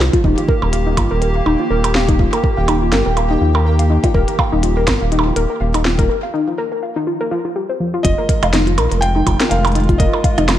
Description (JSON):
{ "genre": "IDM", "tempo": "123 BPM", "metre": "4/4", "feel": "swing 56% on 16ths", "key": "unclear", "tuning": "A4 = 440 Hz", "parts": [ { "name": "hollow soft pad", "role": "sustained chords", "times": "0.0-10.6 s", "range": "Eb3 to G4", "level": "-24 LUFS", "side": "right 1 dB", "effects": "chorus, sidechain pumping" }, { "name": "warbly dusty pluck", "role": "arpeggios", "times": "0.0-10.6 s", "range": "F3 to F5", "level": "-19 LUFS", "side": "left 2 dB", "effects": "chorus, digital delay" }, { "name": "round analog bass", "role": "bass", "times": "0.0-10.6 s", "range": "Eb1 to Eb2", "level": "-17 LUFS", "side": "equal", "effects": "none" }, { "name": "glitchy drum kit", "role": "drums", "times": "0.0-10.6 s", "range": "hi-hat, percussion blips, snare drum", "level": "-21 LUFS", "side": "right 2 dB", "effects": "studio reverb, tape echo" }, { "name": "electronic kick drum", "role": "drums", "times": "0.1-10.4 s", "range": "none", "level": "-17 LUFS", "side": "equal", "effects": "studio reverb" }, { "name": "pulsing gated texture", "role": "texture", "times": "0.8-6.1 s", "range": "G5", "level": "-29 LUFS", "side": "left 1 dB", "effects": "chorus, built-in reverb" }, { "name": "felt-muted upright piano", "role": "melody", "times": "8.0-10.6 s", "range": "Eb5 to G5", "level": "-22 LUFS", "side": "right 1 dB", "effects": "tape echo" } ], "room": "light reverb, digital ambience", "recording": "dark, warm production", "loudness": "-13 LUFS", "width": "side -12 dB against mid", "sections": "0.0-8.0 A section; 8.0-10.6 B section", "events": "break 6.1-8.0", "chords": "0.2 Eb; 8.0 Fm7", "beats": "| 0.24 0.73 1.22 1.71 | 2.19 2.68 3.17 3.66 | 4.14 4.63 5.12 5.61 | 6.09 6.58 7.07 7.56 | 8.05 8.53 9.02 9.51 | 10.00 10.48" }